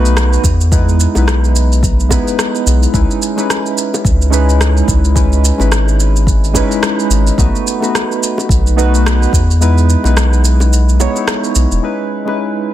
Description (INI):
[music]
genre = sunset chillout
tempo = 108 BPM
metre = 4/4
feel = swing 58% on 16ths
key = C# minor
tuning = A4 = 440 Hz
[part]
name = soft electric-piano-like synth keys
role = accompaniment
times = 0.0-12.7 s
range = G#3 to C#5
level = -16 LUFS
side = equal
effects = chorus, auto-pan, tape echo
[part]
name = round analog bass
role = bass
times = 0.0-11.8 s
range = E1 to E2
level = -11 LUFS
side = equal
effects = none
[part]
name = electronic shaker and rim click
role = drums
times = 0.1-11.8 s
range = none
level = -19 LUFS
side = right 1 dB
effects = soft clipping on snare
[part]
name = electronic kick drum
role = drums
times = 0.4-9.5 s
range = none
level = -15 LUFS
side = equal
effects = none
[part]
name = bongos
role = percussion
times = 1.2-12.4 s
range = none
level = -24 LUFS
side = right 2 dB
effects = none
[sound]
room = digital ambience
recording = dense, heavily limited modern master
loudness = -10 LUFS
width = side -13 dB against mid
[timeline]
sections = 0.0-11.8 A section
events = kick drops out 9.6-11.8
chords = 0.4 Emaj7; 2.9 C#m9; 7.4 B7; 9.3 Emaj7; 11.8 C#m9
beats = 0.17 | 0.72 1.28 1.83 2.39 | 2.94 3.50 4.05 4.61 | 5.17 5.72 6.28 6.83 | 7.39 7.94 8.50 9.05 | 9.61 10.16 10.72 11.28 | 11.83 12.39